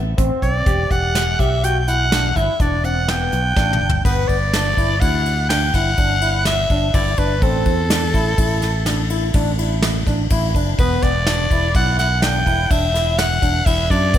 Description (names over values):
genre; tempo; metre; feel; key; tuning
progressive instrumental, band music in an uneven meter; 125 BPM; 7/4; straight; E minor; A4 = 441 Hz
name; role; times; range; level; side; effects
fingered electric bass; bass; 0.0-14.2 s; E1 to F#2; -20 LUFS; equal; none
barky tine electric piano; arpeggios; 0.2-14.2 s; B3 to G4; -24 LUFS; left 2 dB; lush chorus, slapback echo, tape echo
soft brush drum kit; drums; 0.2-14.2 s; hi-hat, kick drum, ride cymbal, snare drum, toms; -20 LUFS; equal; none
raspy soprano saxophone; melody; 0.4-14.2 s; A4 to G5; -20 LUFS; equal; tape echo
room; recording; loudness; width
light reverb; none; -15 LUFS; side -11 dB against mid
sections
0.0-4.0 A section; 4.0-14.2 B section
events
soprano saxophone solo 0.0-4.0; drum fill 3.6-4.0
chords
0.0 Am; 0.7 Em7; 4.0 Gmaj7(no3); 7.4 A5; 10.8 E7(no3)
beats
0.19 | 0.67 1.15 1.64 2.12 2.60 3.08 3.57 | 4.05 4.53 5.01 5.49 5.97 6.46 6.94 | 7.42 7.90 8.38 8.86 9.34 9.82 10.30 | 10.78 11.26 11.74 12.22 12.70 13.18 13.66 | 14.14